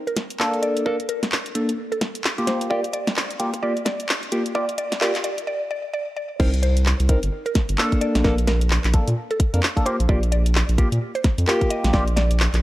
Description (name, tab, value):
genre	UK garage, two-step garage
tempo	130 BPM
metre	4/4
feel	swing 60% on 16ths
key	G minor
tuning	A4 = 440 Hz
part	mallet-like synth pluck	melody	0.1-12.4 s	A4 to Eb5	-28 LUFS	equal	chorus, tape echo
part	garage drum kit	drums	0.1-12.6 s	crash cymbal, handclaps, hi-hat, snare drum	-25 LUFS	equal	none
part	electronic kick drum	drums	0.2-12.0 s	none	-20 LUFS	equal	high-pass filter on kick
part	barky tine electric piano	stabs	0.4-12.0 s	Bb3 to Bb4	-25 LUFS	equal	phaser, low-pass filter, tape echo
part	saturated sub bass	bass	6.4-12.6 s	G1 to Bb2	-20 LUFS	equal	tube saturation
room	light reverb, digital ambience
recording	echo-heavy mix, high-pass filter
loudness	-19 LUFS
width	side -16 dB against mid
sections	0.0-6.4 A section; 6.4-12.6 B section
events	build-up 0.0-6.4; filter sweep on synth pluck 0.0-6.4; break 5.5-6.4; drop 6.4-12.6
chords	0.0 N.C.; 0.6 Bbmaj7; 2.5 Gm7/Bb; 6.4 C7(no3); 8.0 Bbmaj7; 9.9 Gm7/Bb